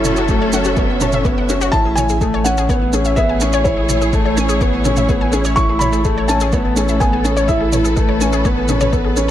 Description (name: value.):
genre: piano and strings electronica.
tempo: 125 BPM.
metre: 4/4.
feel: straight.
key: A major.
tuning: A4 = 440 Hz.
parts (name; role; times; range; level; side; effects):
felt-muted upright piano; melody; 0.0-8.4 s; C#5 to C#6; -21 LUFS; equal; digital delay.
warm symphonic string section; sustained chords; 0.0-9.3 s; F#3 to E5; -22 LUFS; right 1 dB; none.
felt-muted upright piano; riff; 0.0-9.3 s; A3 to E4; -19 LUFS; left 1 dB; digital delay.
round analog bass; bass; 0.0-9.3 s; F#1 to A1; -20 LUFS; equal; sidechain pumping.
electronic toms and shaker; drums; 0.0-9.3 s; none; -24 LUFS; right 3 dB; none.
analog pluck; arpeggios; 0.1-9.3 s; F#4 to A5; -24 LUFS; left 5 dB; chorus, cassette tape, sidechain pumping, digital delay.
electronic kick drum; drums; 0.3-9.0 s; none; -19 LUFS; equal; none.
room: light reverb.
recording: none.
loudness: -13 LUFS.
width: side -11 dB against mid.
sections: 0.0-9.3 A section.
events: none.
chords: 0.0 F#m7; 1.7 Amaj7.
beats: 0.29 0.77 1.25 | 1.73 2.21 2.69 3.17 | 3.65 4.13 4.61 5.09 | 5.57 6.05 6.53 7.01 | 7.49 7.97 8.45 8.93.